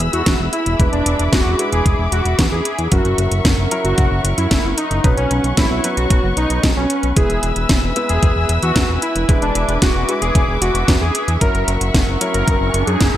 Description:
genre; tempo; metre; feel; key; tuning
italo disco; 113 BPM; 4/4; straight; E major; A4 = 439 Hz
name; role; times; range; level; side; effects
muted chamber string section; sustained chords; 0.0-13.2 s; G#4 to E6; -24 LUFS; left 1 dB; none
dark concert grand piano; stabs; 0.0-13.2 s; F#3 to B4; -25 LUFS; equal; low-pass filter
fat analog bass; bass; 0.0-13.2 s; D1 to F#2; -19 LUFS; equal; none
house drum kit; drums; 0.0-13.1 s; hi-hat, snare drum; -20 LUFS; equal; overdrive, gated reverb
wide unison lead; melody; 0.1-13.2 s; C#4 to A#4; -21 LUFS; equal; cassette tape, ping-pong delay
electronic kick drum; drums; 0.3-13.1 s; none; -17 LUFS; equal; overdrive
riser; sound effects; 12.2-13.2 s; none; -26 LUFS; right 2 dB; none
room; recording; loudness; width
light reverb, digital ambience; none; -14 LUFS; side -12 dB against mid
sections
0.0-13.2 A section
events
filter sweep on grand piano 0.0-13.2; riser 12.2-13.2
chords
0.0 E; 0.8 E7; 2.9 F#7; 5.0 Bsus2; 7.2 E; 9.3 E7; 11.4 F#7

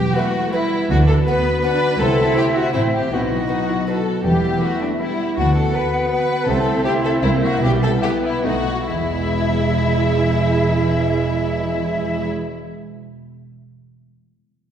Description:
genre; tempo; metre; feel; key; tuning
cinematic, playful, whimsical film cue; 135-164 BPM; 3/4; straight; unclear; A4 = 441 Hz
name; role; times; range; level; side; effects
rich studio violin section; second line; 0.0-12.3 s; D4 to B4; -23 LUFS; left 1 dB; none
warm French horn section; sustained chords; 0.0-12.3 s; G#3 to B4; -27 LUFS; equal; none
concert harp; arpeggios; 0.0-12.8 s; A2 to B5; -24 LUFS; left 2 dB; none
warm chamber cello section; bass; 0.0-12.3 s; C2 to C3; -25 LUFS; right 2 dB; none
warm chamber double bass section; bass; 0.0-12.3 s; E1 to D2; -24 LUFS; right 3 dB; none
warm studio viola section; accompaniment; 0.1-12.3 s; G3 to G#4; -27 LUFS; right 1 dB; none
warm chamber violin section; melody; 0.2-12.3 s; B4 to E5; -31 LUFS; left 4 dB; none
concert flute; second line; 0.2-12.3 s; D#5 to F#5; -27 LUFS; left 1 dB; none
dark bassoon; accompaniment; 0.2-12.3 s; G#3 to C4; -28 LUFS; equal; none
room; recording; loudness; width
wet scoring stage reverb, RT60 1.7 s; heard from further back in the room; -16 LUFS; side -9 dB against mid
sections
0.0-8.9 A section; 8.9-11.5 B section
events
slowing down 5.9-8.9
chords
0.0 Em; 0.9 Bm/D; 2.0 Am/C; 2.7 Am; 3.1 B; 4.3 Em; 5.4 Bm/D; 6.5 Am/C; 7.2 C7; 7.6 Em/B; 8.4 B7; 8.9 E

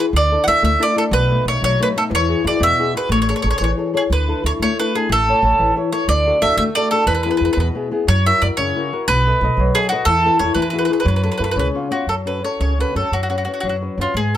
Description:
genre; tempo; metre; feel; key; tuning
italian folk, Italian serenade; 120 BPM (dotted quarters); 6/8; rubato; A major; A4 = 445 Hz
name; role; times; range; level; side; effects
bowl-back mandolin; melody; 0.0-14.4 s; E#4 to F#5; -18 LUFS; right 1 dB; plate reverb
flamenco guitar; accompaniment; 0.0-14.4 s; B2 to D#5; -21 LUFS; left 4 dB; none
upright bass; bass; 0.1-14.4 s; A1 to G#2; -20 LUFS; right 1 dB; none
room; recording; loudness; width
light reverb; none; -15 LUFS; side -11 dB against mid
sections
0.0-12.1 A section; 12.1-14.4 B section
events
none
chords
0.1 Dsus2; 1.1 B7; 2.1 Eadd9; 3.1 Amaj7; 4.1 Dsus2; 5.1 A; 6.1 D; 7.1 E; 8.1 F#7; 9.1 B7; 10.1 Esus4; 10.6 Eadd9; 11.1 F#m7; 11.6 C#7; 12.1 F#m; 13.1 Bsus2/F#

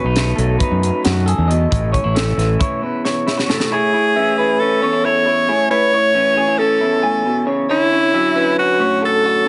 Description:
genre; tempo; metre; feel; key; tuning
math rock and midwest emo; 270 BPM (eighths); 9/8; straight; A major; A4 = 440 Hz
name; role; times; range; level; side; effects
electric guitar through a small old amp; accompaniment; 0.0-9.5 s; E2 to A4; -23 LUFS; equal; none
electric guitar through a small old amp; arpeggios; 0.0-9.5 s; F#4 to G#5; -23 LUFS; equal; harmonic tremolo
growling fingered electric bass; bass; 0.0-2.6 s; A1 to F#2; -19 LUFS; equal; overdrive
crisp fusion drum kit; drums; 0.2-3.7 s; hi-hat, kick drum, snare drum; -23 LUFS; equal; none
edgy alto saxophone; melody; 3.7-9.5 s; E4 to C#5; -18 LUFS; equal; none
room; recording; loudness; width
light reverb; heavily compressed radio sound, multiband compression, nothing above 10.7 kHz; -16 LUFS; mono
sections
0.0-3.7 A section; 3.7-9.5 B section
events
break 2.7-3.7; drum fill 3.0-3.7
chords
0.0 B7; 1.7 A; 3.7 Amaj7; 7.7 Dmaj7

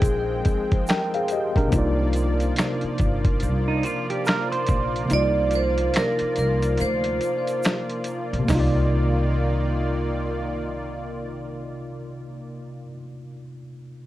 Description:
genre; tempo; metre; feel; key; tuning
lo-fi hip hop; 71 BPM; 4/4; swing 61% on 16ths; C minor; A4 = 439 Hz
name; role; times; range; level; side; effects
vibraphone with hard mallets; melody; 0.0-7.6 s; Ab4 to D5; -24 LUFS; moving between left 5 dB and right 5 dB; auto-pan, tape echo
mellow tine electric piano; accompaniment; 0.0-14.1 s; C3 to G5; -27 LUFS; equal; fast stereo tremolo, cassette tape
lush unison pad; sustained chords; 0.0-12.6 s; Eb3 to G5; -30 LUFS; equal; chorus
upright bass; bass; 0.0-12.9 s; G1 to D2; -26 LUFS; equal; none
dusty soul sampler-style drum kit; drums; 0.0-8.7 s; finger snaps, hi-hat, kick drum, snare drum, toms; -24 LUFS; equal; overdrive
egg shaker; percussion; 0.0-8.9 s; none; -45 LUFS; right 5 dB; none
clean electric guitar; second line; 3.7-5.7 s; Eb4 to C5; -27 LUFS; right 4 dB; phaser, tape echo
room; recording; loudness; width
light reverb; worn, warbling old tape, cassette tape, warbly pitch drift; -20 LUFS; side -15 dB against mid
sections
0.0-8.5 A section; 8.5-11.9 B section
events
break 6.8-8.5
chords
0.0 Fm11; 1.7 Cm11

